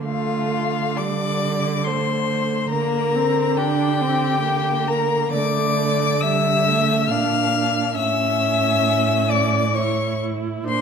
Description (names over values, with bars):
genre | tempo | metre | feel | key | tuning
classical, slow romantic movement for string quartet | 68 BPM | 3/4 | rubato | D minor | A4 = 440 Hz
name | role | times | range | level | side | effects
clear violin | melody | 0.0-10.8 s | F5 to F6 | -24 LUFS | left 7 dB | none
warm viola | accompaniment | 0.0-10.8 s | G3 to E4 | -25 LUFS | right 4 dB | none
dark cello | bass | 0.0-10.8 s | A2 to D3 | -24 LUFS | right 5 dB | none
warm violin | second line | 0.1-10.8 s | F4 to F5 | -23 LUFS | left 4 dB | none
room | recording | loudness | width
wet recital hall reverb, RT60 1.5 s | none | -18 LUFS | side -6 dB against mid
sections
0.0-10.8 A section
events
none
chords
0.0 Dm; 2.7 Gm/D; 5.3 Dm; 8.0 A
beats
| 0.05 0.98 1.85 | 2.72 3.58 4.45 | 5.33 6.23 7.10 | 7.97 8.85 9.75 | 10.66